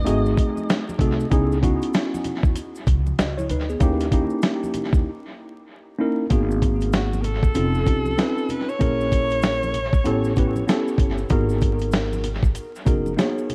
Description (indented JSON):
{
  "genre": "hip hop, jazz-hop",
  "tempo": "96 BPM",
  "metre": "4/4",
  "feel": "swing 60% on 16ths",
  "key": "G# minor",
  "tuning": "A4 = 436 Hz",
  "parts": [
    { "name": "breathy alto saxophone", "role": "melody", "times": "0.0-1.0, 6.9-11.0 s", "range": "F#4 to D#5", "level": "-30 LUFS", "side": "equal", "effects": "dub echo" },
    { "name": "mellow tine electric piano", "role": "accompaniment", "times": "0.0-13.5 s", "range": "A3 to D#5", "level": "-26 LUFS", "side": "equal", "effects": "dub echo" },
    { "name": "upright bass", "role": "bass", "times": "0.0-13.1 s", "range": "F1 to E2", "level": "-27 LUFS", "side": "equal", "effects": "none" },
    { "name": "dusty soul sampler-style drum kit", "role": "drums", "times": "0.1-13.5 s", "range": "hi-hat, kick drum, snare drum", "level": "-24 LUFS", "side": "equal", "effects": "overdrive, vintage 12-bit sampler grit, dub echo" },
    { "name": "maracas and congas", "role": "percussion", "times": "0.1-13.5 s", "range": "none", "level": "-40 LUFS", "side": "equal", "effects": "none" }
  ],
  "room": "light reverb, studio reverb",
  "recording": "echo-heavy mix, vinyl crackle",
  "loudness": "-22 LUFS",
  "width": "mono",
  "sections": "0.0-6.3 A section; 6.3-13.5 B section",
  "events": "break 5.1-6.3",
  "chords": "0.1 G#7b9; 1.3 C#m9; 3.8 D#7b9; 6.3 G#m7; 7.6 F7b13; 8.8 A#m7b5; 10.1 A9; 11.3 G#m7"
}